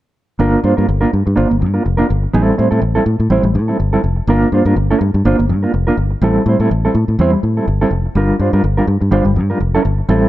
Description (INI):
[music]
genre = disco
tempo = 124 BPM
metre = 4/4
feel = swing 56% on 16ths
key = G dorian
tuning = A4 = 443 Hz
[part]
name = mellow electric guitar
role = accompaniment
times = 0.4-10.3 s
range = G3 to C5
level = -15 LUFS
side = right 2 dB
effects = tremolo
[part]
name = fingered electric bass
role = bass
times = 0.4-10.2 s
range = F1 to A2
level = -15 LUFS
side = left 1 dB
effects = none
[sound]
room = light reverb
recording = dark, warm production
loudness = -12 LUFS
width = side -15 dB against mid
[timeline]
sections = 0.4-10.3 A section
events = none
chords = 0.4 Gm7; 2.3 Am7; 4.3 Gm7; 6.2 Am7; 8.2 Gm7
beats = | 0.39 0.88 1.36 1.85 | 2.33 2.82 3.31 3.79 | 4.28 4.76 5.25 5.73 | 6.22 6.70 7.18 7.67 | 8.15 8.64 9.12 9.61 | 10.09